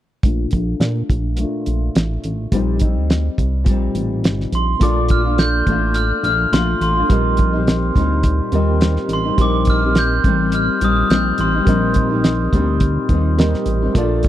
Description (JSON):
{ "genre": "indie pop, bedroom pop", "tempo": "105 BPM", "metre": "4/4", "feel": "swing 55% on 16ths", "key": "unclear", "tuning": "A4 = 441 Hz", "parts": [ { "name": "nylon-string guitar", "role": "accompaniment", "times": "0.2-14.3 s", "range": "Bb2 to F4", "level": "-22 LUFS", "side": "left 4 dB", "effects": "lush chorus, vibrato effect, low-pass filter" }, { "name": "chorused synth bass", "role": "bass", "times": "0.2-14.3 s", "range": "G1 to Bb2", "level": "-19 LUFS", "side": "equal", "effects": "transformer saturation" }, { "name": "cloth-damped thuddy drum kit", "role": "drums", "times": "0.2-14.3 s", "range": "hi-hat, kick drum, snare drum", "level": "-17 LUFS", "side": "equal", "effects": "none" }, { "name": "glockenspiel with soft plastic mallets", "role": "melody", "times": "4.5-13.1 s", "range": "C6 to G6", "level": "-21 LUFS", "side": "equal", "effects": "lush chorus, slapback echo" }, { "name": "bright reed electric piano", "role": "accompaniment", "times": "4.8-14.3 s", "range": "Bb3 to Eb5", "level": "-25 LUFS", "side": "right 4 dB", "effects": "fast tremolo, cassette tape" } ], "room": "studio ambience", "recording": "dry, close 1970s-style studio recording", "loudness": "-15 LUFS", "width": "side -12 dB against mid", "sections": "0.2-4.8 A section; 4.8-14.3 B section", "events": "filter sweep on nylon-string guitar 0.2-4.8", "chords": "0.2 Bbmaj7; 2.5 Eb6/Bb; 4.8 Bbmaj7; 7.1 Eb6" }